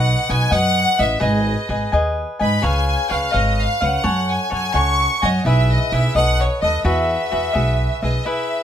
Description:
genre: mexican folk, mariachi.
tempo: 85 BPM (dotted quarters).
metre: 6/8.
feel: straight.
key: E major.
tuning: A4 = 440 Hz.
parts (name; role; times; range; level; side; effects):
clear studio violin section; melody; 0.0-8.6 s; C#5 to C#6; -20 LUFS; equal; none.
cavaquinho; accompaniment; 0.0-8.6 s; E4 to G#5; -22 LUFS; left 2 dB; none.
upright bass; bass; 0.0-8.2 s; G#1 to G#2; -19 LUFS; right 1 dB; none.
room: light reverb.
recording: none.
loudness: -16 LUFS.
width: side -10 dB against mid.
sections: 0.0-8.2 A section.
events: none.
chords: 0.0 B; 1.2 G#m; 2.6 C#7; 4.0 F#madd9; 5.4 E/B; 6.1 B7; 6.8 Eadd9.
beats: 0.52 | 1.23 1.93 | 2.63 3.34 | 4.04 4.75 | 5.45 6.14 | 6.84 7.54 | 8.25.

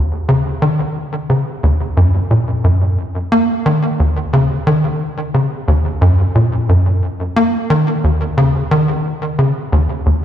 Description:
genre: ambient.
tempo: 89 BPM.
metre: 4/4.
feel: straight.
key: Eb minor.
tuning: A4 = 439 Hz.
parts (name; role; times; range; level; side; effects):
tight sequencer bass; solo; 0.0-10.2 s; Eb2 to Bb3; -13 LUFS; equal; lush chorus, tape echo.
room: wet echo chamber reverb, RT60 2.3 s.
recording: echo-heavy mix.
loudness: -13 LUFS.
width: side -10 dB against mid.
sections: 0.0-10.2 A section.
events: none.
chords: none.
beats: 0.62 1.30 1.97 | 2.65 3.32 3.99 4.67 | 5.34 6.02 6.69 7.37 | 8.04 8.71 9.39 10.06.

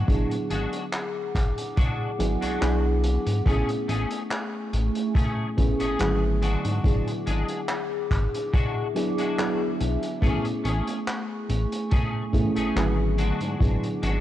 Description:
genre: vaporwave.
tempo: 71 BPM.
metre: 4/4.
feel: straight.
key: A major.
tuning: A4 = 440 Hz.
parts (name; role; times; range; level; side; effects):
mellow FM electric piano; accompaniment; 0.0-14.2 s; D3 to G#4; -28 LUFS; equal; lush chorus, tape echo.
warbly tape-like pad; sustained chords; 0.0-14.2 s; A3 to D6; -33 LUFS; equal; chorus, built-in reverb, phaser.
clean electric guitar; riff; 0.0-14.2 s; G#3 to G#4; -34 LUFS; left 2 dB; ensemble chorus, vintage 12-bit sampler grit, tape echo.
chorused synth bass; bass; 0.0-14.2 s; G#1 to G#2; -25 LUFS; equal; none.
crunchy breakbeat drum kit; drums; 0.1-14.2 s; handclaps, hi-hat; -35 LUFS; equal; none.
kick drum; drums; 0.1-13.8 s; none; -24 LUFS; equal; none.
room: light reverb, small room reverb.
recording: dark, warm production, cassette tape.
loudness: -23 LUFS.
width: side -13 dB against mid.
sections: 0.0-14.2 A section.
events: none.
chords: 0.0 E9/G#; 3.5 Amaj7; 6.4 E9/G#; 10.2 Amaj7; 13.2 E9/G#.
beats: | 0.09 0.93 1.78 2.62 | 3.47 4.31 5.16 6.00 | 6.85 7.69 8.54 9.38 | 10.23 11.07 11.92 12.76 | 13.61.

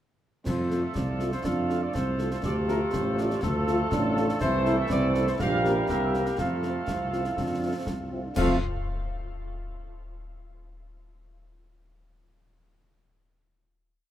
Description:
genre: military-style march for wind band.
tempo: 121 BPM.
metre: 2/4.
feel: straight.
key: F major.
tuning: A4 = 441 Hz.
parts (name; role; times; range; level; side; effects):
mellow trumpet section; melody; 0.5-8.6 s; A4 to G5; -33 LUFS; right 2 dB; none.
mellow woodwind section; second line; 0.5-8.6 s; E4 to Bb4; -35 LUFS; left 2 dB; none.
warm trombone section; sustained chords; 0.5-8.6 s; E3 to Bb3; -35 LUFS; right 2 dB; none.
mellow tuba; bass; 0.5-8.6 s; A1 to F2; -28 LUFS; right 1 dB; none.
concert snare drum, clash cymbals and concert bass drum; drums; 0.5-8.6 s; none; -34 LUFS; left 1 dB; none.
mellow French horn section; accompaniment; 0.7-8.6 s; A3 to A4; -33 LUFS; left 2 dB; none.
warm euphonium; second line; 1.0-8.4 s; C4 to G4; -33 LUFS; right 2 dB; none.
room: light reverb.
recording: heard from further back in the room.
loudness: -24 LUFS.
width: side -11 dB against mid.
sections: 0.5-8.4 A section; 8.4-9.4 final chord.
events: none.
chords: 0.5 F; 2.4 Dm; 4.4 Am/C; 5.4 Gm/Bb; 5.9 C7; 6.4 F.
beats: | 0.46 0.95 | 1.45 1.95 | 2.44 2.94 | 3.43 3.92 | 4.42 4.91 | 5.41 5.90 | 6.39 6.89 | 7.38 7.88 | 8.37.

